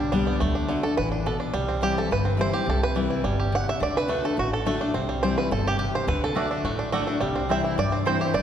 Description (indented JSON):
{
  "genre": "bluegrass",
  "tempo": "212 BPM",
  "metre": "4/4",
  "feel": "straight",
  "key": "unclear",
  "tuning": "A4 = 440 Hz",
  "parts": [
    { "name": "bluegrass banjo", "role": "melody", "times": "0.0-8.4 s", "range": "D3 to F#5", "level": "-26 LUFS", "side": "right 3 dB", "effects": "none" },
    { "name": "picked steel-string acoustic guitar", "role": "accompaniment", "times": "0.0-8.4 s", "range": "G2 to G4", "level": "-27 LUFS", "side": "left 4 dB", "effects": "none" },
    { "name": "upright bass", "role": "bass", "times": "0.0-8.4 s", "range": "G1 to G2", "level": "-29 LUFS", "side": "equal", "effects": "none" },
    { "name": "mandolin", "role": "stabs", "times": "6.4-8.2 s", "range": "A3 to G5", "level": "-30 LUFS", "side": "right 4 dB", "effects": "none" }
  ],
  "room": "wet concert hall reverb, RT60 1.9 s",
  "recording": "recorded in a church or concert hall",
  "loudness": "-22 LUFS",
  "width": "side -9 dB against mid",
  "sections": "0.0-8.4 A section",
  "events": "five-string banjo solo 0.0-8.4",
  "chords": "0.4 D; 1.5 C; 3.8 D; 4.9 C; 6.1 D; 7.2 C"
}